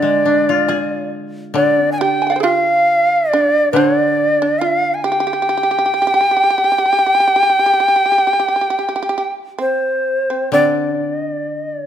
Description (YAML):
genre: japanese traditional, Japanese chamber music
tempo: 61-70 BPM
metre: 4/4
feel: rubato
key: unclear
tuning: A4 = 440 Hz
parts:
  - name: bright reedy long shakuhachi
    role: melody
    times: 0.0-11.9 s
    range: C5 to Ab5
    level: -14 LUFS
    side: equal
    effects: none
  - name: shamisen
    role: second line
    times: 0.0-11.9 s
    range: C4 to Ab5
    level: -21 LUFS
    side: right 4 dB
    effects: none
  - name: koto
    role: accompaniment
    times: 0.0-11.9 s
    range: D3 to Ab4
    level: -21 LUFS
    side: left 3 dB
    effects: none
room: moderate recital hall reverb, RT60 1.6 s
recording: minimal, uncompressed stereo recording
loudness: -13 LUFS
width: side -9 dB against mid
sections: 0.0-10.5 A section; 10.5-11.9 B section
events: none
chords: none